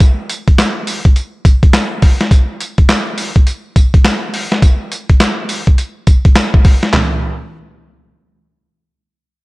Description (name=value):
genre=R&B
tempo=104 BPM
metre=4/4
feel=swing 63% on 16ths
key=none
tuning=none
part: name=boom bap sampler-style drum kit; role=drums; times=0.0-7.1 s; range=handclaps, hi-hat, kick drum, snare drum, tambourine, toms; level=-9 LUFS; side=equal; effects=vintage 12-bit sampler grit, gated reverb
room=little or no reverb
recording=none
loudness=-10 LUFS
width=side -22 dB against mid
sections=0.0-6.9 A section; 6.9-9.2 B section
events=none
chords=none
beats=| 0.01 0.58 1.16 1.74 | 2.31 2.89 3.47 4.04 | 4.62 5.20 5.78 6.35 | 6.93